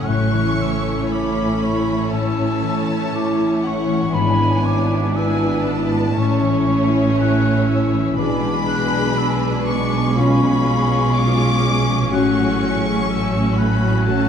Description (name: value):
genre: classical, slow romantic movement for symphony orchestra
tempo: 60 BPM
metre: 4/4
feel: rubato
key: unclear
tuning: A4 = 440 Hz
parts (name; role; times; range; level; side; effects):
- warm symphonic violin section; melody; 0.0-14.3 s; F#5 to D6; -27 LUFS; left 1 dB; none
- silver concert flute; second line; 0.0-14.3 s; B5 to F#6; -27 LUFS; left 2 dB; none
- warm symphonic violin section; second line; 0.0-14.3 s; E4 to C#5; -27 LUFS; left 1 dB; none
- rich symphonic viola section; accompaniment; 0.0-14.3 s; G#3 to D4; -24 LUFS; right 2 dB; none
- mellow French horn section; sustained chords; 0.0-14.3 s; A3 to G#4; -22 LUFS; left 1 dB; none
- concert harp; arpeggios; 0.0-14.3 s; F#2 to B4; -24 LUFS; left 6 dB; none
- warm symphonic cello section; bass; 0.0-14.3 s; G#2 to B2; -24 LUFS; right 2 dB; none
- warm symphonic double bass section; bass; 0.0-14.3 s; G#1 to B1; -24 LUFS; right 4 dB; none
room: wet recital hall reverb, RT60 1.8 s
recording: dark, warm production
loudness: -16 LUFS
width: side -8 dB against mid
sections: 0.0-14.3 A section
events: none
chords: 0.1 A; 4.1 E7/G#; 6.2 A; 8.2 G#dim/B; 10.2 C#7/B; 12.1 F#m/A